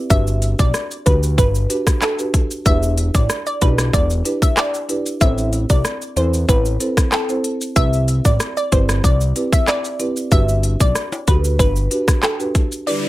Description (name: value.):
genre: dancehall.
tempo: 94 BPM.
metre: 4/4.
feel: straight.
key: unclear.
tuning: A4 = 439 Hz.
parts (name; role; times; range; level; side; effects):
marimba with soft mallets; accompaniment; 0.0-13.1 s; C4 to C5; -24 LUFS; right 2 dB; none.
glassy wavetable pluck; melody; 0.1-13.1 s; A4 to E5; -22 LUFS; equal; chorus, digital delay.
fat analog bass; bass; 0.1-11.9 s; E1 to E2; -18 LUFS; equal; none.
island pop drum kit; drums; 0.1-12.9 s; handclaps, hi-hat, kick drum, rim click, shaker; -17 LUFS; equal; overdrive.
maracas and timbales; percussion; 0.1-12.9 s; none; -31 LUFS; left 4 dB; none.
glassy FM pad; sustained chords; 12.9-13.1 s; D3 to B4; -25 LUFS; left 4 dB; ensemble chorus, built-in reverb, sidechain pumping.
downlifter; sound effects; 12.9-13.1 s; none; -24 LUFS; equal; none.
room: little or no reverb.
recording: none.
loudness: -15 LUFS.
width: side -16 dB against mid.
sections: 0.0-12.9 A section.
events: none.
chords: 0.1 Gmaj7; 2.7 Em7; 5.2 Am; 7.8 Cmaj7; 10.3 Gmaj7.